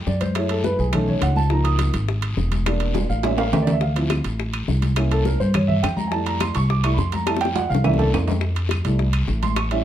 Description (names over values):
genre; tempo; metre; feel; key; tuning
Afro-Cuban jazz; 208 BPM; 4/4; straight; F major; A4 = 440 Hz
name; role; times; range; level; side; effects
warm baby grand piano; accompaniment; 0.0-9.8 s; F3 to Eb6; -24 LUFS; right 2 dB; none
upright bass; bass; 0.0-9.8 s; E1 to G2; -21 LUFS; equal; none
bongos; percussion; 0.1-9.8 s; none; -30 LUFS; left 8 dB; none
congas; percussion; 0.1-9.8 s; none; -28 LUFS; left 2 dB; none
guiro; percussion; 0.1-9.8 s; none; -38 LUFS; left 5 dB; none
timbales; percussion; 0.2-9.8 s; none; -29 LUFS; right 7 dB; none
claves; percussion; 4.1-9.7 s; none; -36 LUFS; left 6 dB; none
room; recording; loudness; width
light reverb; dark, warm production; -18 LUFS; side -11 dB against mid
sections
0.0-8.4 A section; 8.4-9.8 A section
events
grand piano solo 0.0-9.8; drum fill 3.0-3.8, 7.3-8.4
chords
0.4 Gbm7; 0.9 B9; 1.5 Db69; 2.7 Em7b5; 3.2 A7b9; 3.8 Dm9; 5.0 C7b9; 6.1 Fmaj9; 7.8 C13; 8.4 Fmaj9